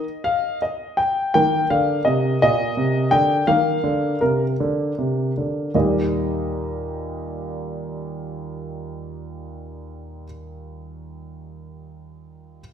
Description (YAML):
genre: classical-period piano sonatina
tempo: 50-56 BPM (dotted quarters)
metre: 6/8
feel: straight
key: Eb major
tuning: A4 = 441 Hz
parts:
  - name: warm concert grand piano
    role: solo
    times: 0.0-12.6 s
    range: Eb2 to G5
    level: -20 LUFS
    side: equal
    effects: none
room: wet recital hall reverb, RT60 1.2 s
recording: minimal, uncompressed stereo recording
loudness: -19 LUFS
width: side -8 dB against mid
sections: 0.0-1.3 A section; 1.3-5.8 B section; 5.8-10.4 C section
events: slowing down 0.2-5.8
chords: 0.0 Eb5; 3.5 Bb; 5.8 Eb